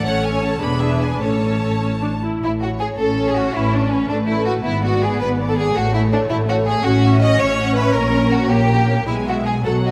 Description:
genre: quick classical-period movement for string orchestra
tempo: 98-111 BPM (dotted quarters)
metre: 6/8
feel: rubato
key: A major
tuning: A4 = 440 Hz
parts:
  - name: rich studio violin section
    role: melody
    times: 0.0-9.9 s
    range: A#4 to B5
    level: -31 LUFS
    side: equal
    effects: none
  - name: clear studio violin section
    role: second line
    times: 0.0-9.9 s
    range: C#4 to D#5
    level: -23 LUFS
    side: equal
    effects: none
  - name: warm studio viola section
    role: accompaniment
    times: 0.0-9.9 s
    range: F#3 to A4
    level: -24 LUFS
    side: equal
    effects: none
  - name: warm studio double bass section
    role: bass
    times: 0.0-9.9 s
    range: E1 to B1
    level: -25 LUFS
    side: equal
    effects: none
  - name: warm studio cello section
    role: bass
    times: 0.1-9.9 s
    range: E2 to B2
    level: -25 LUFS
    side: equal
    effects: none
room: moderate concert hall reverb, RT60 2.5 s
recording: none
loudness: -18 LUFS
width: mono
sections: 0.0-2.4 A section; 2.4-9.9 A section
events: none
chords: 0.1 A; 0.6 E7; 1.2 A; 4.7 G#dim; 5.8 A; 6.8 F#m7/A; 8.0 A#m6; 9.1 E/B

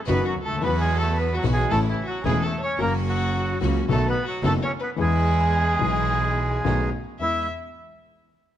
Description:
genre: tango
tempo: 110 BPM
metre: 4/4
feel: rubato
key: E major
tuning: A4 = 439 Hz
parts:
  - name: bandoneon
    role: melody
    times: 0.1-7.5 s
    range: E3 to C#5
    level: -26 LUFS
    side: right 2 dB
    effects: none
  - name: warm violin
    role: second line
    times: 0.1-7.5 s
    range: E4 to E5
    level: -31 LUFS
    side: left 3 dB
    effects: none
  - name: dark grand piano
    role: accompaniment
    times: 0.1-7.4 s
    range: E1 to G#4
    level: -26 LUFS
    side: left 5 dB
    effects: none
  - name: bright studio string section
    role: stabs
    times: 0.1-7.4 s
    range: G#3 to F#4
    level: -35 LUFS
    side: right 2 dB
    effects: none
  - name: clear double bass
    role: bass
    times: 0.1-7.4 s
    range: E1 to E2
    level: -25 LUFS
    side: right 2 dB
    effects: none
room: light reverb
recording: close, detailed microphones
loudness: -20 LUFS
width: side -11 dB against mid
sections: 0.0-7.2 A section; 7.2-8.6 B section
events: none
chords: 0.0 B/F#; 0.6 Esus2; 1.7 A; 2.8 F#; 3.9 B7; 5.0 E; 6.6 B7; 7.2 E

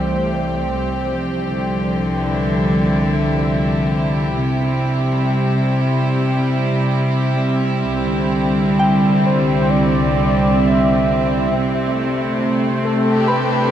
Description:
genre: ambient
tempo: 67 BPM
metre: 4/4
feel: straight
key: unclear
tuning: A4 = 440 Hz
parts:
  - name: warm velvety synth lead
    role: melody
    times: 0.0-13.7 s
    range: A4 to E5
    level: -25 LUFS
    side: left 1 dB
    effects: chorus, shimmer reverb, tape echo
  - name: rich chamber string section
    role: sustained chords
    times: 0.0-13.7 s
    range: C2 to G4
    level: -16 LUFS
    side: equal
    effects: shimmer reverb
  - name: dark chamber double bass section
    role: bass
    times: 0.0-0.7 s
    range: C2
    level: -29 LUFS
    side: equal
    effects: none
  - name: soft synth bell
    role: arpeggios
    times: 8.8-13.7 s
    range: G5 to B5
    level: -25 LUFS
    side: left 3 dB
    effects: chorus, shimmer reverb, tape echo
room: wet huge ambient reverb, RT60 9.3 s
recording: dark, warm production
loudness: -15 LUFS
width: side -10 dB against mid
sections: 0.7-13.7 A section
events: fade-in on soft synth lead 0.7-13.7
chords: 0.0 Am7/C; 0.7 Dm11/C; 4.3 C; 7.9 Em7/C; 11.5 Am11/C

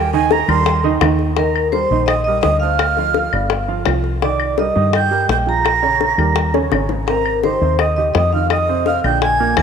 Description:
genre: Afro-Cuban jazz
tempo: 168 BPM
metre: 4/4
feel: straight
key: Eb major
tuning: A4 = 440 Hz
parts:
  - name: breathy jazz flute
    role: second line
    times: 0.0-9.6 s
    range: G5 to Bb6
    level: -21 LUFS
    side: right 8 dB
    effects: none
  - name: warm upright piano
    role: accompaniment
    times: 0.0-9.6 s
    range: Bb2 to F5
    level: -22 LUFS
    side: right 9 dB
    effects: none
  - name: deep dub fingered electric bass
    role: bass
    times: 0.0-9.6 s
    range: G1 to G2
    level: -20 LUFS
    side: left 1 dB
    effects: none
  - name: bongos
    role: percussion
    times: 0.1-9.6 s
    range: none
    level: -21 LUFS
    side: left 12 dB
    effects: none
  - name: claves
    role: percussion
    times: 0.5-9.6 s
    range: none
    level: -27 LUFS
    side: left 14 dB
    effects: none
  - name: vibraphone with medium mallets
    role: melody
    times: 1.4-9.6 s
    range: Bb4 to Bb5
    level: -19 LUFS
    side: left 1 dB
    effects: none
room: moderate echo chamber reverb, RT60 2.5 s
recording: 1960s-style stereo with parts hard left and right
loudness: -14 LUFS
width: side -7 dB against mid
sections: 0.0-1.4 A section; 1.4-9.6 B section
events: flute solo 0.0-1.4; drum fill 6.5-7.1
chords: 0.0 Eb6; 2.8 Dm7; 3.5 G7; 4.2 Cm9; 5.7 Bbm7; 6.4 Eb7; 7.1 Abmaj9; 8.5 F5

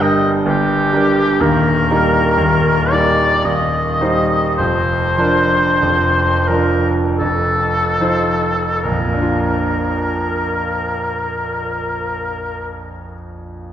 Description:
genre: classical, romantic duo for oboe and grand piano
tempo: 33-65 BPM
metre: 3/4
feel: rubato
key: Bb major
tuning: A4 = 440 Hz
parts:
  - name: warm oboe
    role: melody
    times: 0.0-12.7 s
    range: G4 to Eb5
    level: -17 LUFS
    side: left 1 dB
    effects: none
  - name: bright concert grand piano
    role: accompaniment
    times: 0.0-13.7 s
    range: Eb1 to C5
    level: -17 LUFS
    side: right 1 dB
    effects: none
room: wet scoring stage reverb, RT60 1.9 s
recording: heard from further back in the room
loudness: -14 LUFS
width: side -10 dB against mid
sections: 0.0-8.8 A section; 8.8-13.7 B section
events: slowing down 0.0-8.8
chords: 0.0 Gm; 1.4 Eb; 3.4 Cm/Eb; 4.6 Bb/F; 7.2 F7; 8.8 Bb

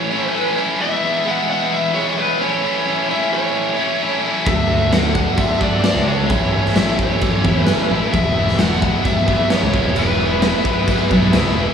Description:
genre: classic rock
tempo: 131 BPM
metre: 4/4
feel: straight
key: E mixolydian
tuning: A4 = 441 Hz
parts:
  - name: lead guitar through a small cranked amp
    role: melody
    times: 0.0-11.3 s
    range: B4 to F#5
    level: -21 LUFS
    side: equal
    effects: overdrive
  - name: distorted electric guitar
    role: riff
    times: 0.0-11.7 s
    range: A2 to F#4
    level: -19 LUFS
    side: left 1 dB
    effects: overdrive, slapback echo
  - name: tonewheel organ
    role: sustained chords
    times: 4.5-11.7 s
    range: B3 to F5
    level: -29 LUFS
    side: equal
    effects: overdrive, chorus vibrato, slow rotary speaker
  - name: fingered electric bass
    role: bass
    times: 4.5-11.7 s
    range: E1 to E2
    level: -19 LUFS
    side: equal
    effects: none
  - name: raw garage drum kit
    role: drums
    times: 4.5-11.4 s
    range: crash cymbal, kick drum, snare drum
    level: -18 LUFS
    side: equal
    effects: none
room: light reverb, studio reverb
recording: live gig heard through the venue's PA, club reverb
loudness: -15 LUFS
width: side -7 dB against mid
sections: 0.0-11.7 A section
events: none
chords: 0.0 A; 0.8 E; 2.4 A/E; 4.5 Dadd9; 6.3 A; 8.1 E

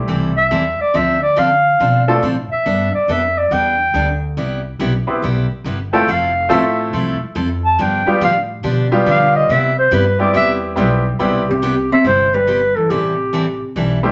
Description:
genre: country, western swing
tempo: 141 BPM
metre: 4/4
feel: swing 67% on 8ths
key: C major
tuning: A4 = 440 Hz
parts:
  - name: bright upright piano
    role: accompaniment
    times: 0.0-2.2, 5.1-14.1 s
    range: G3 to B4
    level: -19 LUFS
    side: equal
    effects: none
  - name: upright bass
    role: bass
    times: 0.0-14.1 s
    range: F1 to D3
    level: -24 LUFS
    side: equal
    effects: none
  - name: picked steel-string acoustic guitar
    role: accompaniment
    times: 0.1-14.0 s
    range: C3 to A4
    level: -24 LUFS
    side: equal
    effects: none
  - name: breathy clarinet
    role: melody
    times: 0.4-13.7 s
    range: G4 to A5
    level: -18 LUFS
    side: equal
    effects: none
  - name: hollow-body jazz guitar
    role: second line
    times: 11.5-13.8 s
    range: C3 to C4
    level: -23 LUFS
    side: equal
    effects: none
room: wet studio reverb, RT60 0.7 s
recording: nothing above 7.8 kHz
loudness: -16 LUFS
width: mono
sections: 0.0-11.2 A section; 11.2-14.1 B section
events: clarinet solo 0.0-11.2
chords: 0.0 Am7; 0.9 Dm7; 2.7 Gadd9; 4.4 Cmaj7; 6.1 Fmaj7; 7.8 G7; 9.5 Cmaj7; 12.9 Am7

